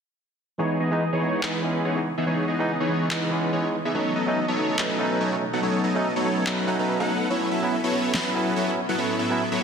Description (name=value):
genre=future bass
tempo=143 BPM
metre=4/4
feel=swing 55% on 16ths, half-time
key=C# minor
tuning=A4 = 441 Hz
part: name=barky tine electric piano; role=accompaniment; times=0.6-9.6 s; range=E3 to E4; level=-27 LUFS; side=right 2 dB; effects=tape echo
part: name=shimmering ambient pad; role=sustained chords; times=2.0-9.6 s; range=A2 to D#4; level=-36 LUFS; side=left 1 dB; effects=chorus, built-in reverb, phaser, vintage 12-bit sampler grit
part: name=supersaw chords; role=riff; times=0.6-9.6 s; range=E3 to F#5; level=-24 LUFS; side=equal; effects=low-pass filter, tape echo
part: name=electronic handclaps and snare drum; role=drums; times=1.4-8.2 s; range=none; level=-30 LUFS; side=left 1 dB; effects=none
room=moderate lush hall reverb, RT60 2.1 s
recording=dense, heavily limited modern master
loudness=-22 LUFS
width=side -6 dB against mid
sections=0.6-9.6 A section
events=filter sweep on supersaw synth 0.6-9.6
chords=0.6 C#m9; 3.9 B9; 7.3 A69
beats=| 0.59 1.01 1.43 1.85 | 2.27 2.69 3.11 3.53 | 3.95 4.37 4.79 5.21 | 5.63 6.04 6.46 6.88 | 7.30 7.72 8.14 8.56 | 8.98 9.40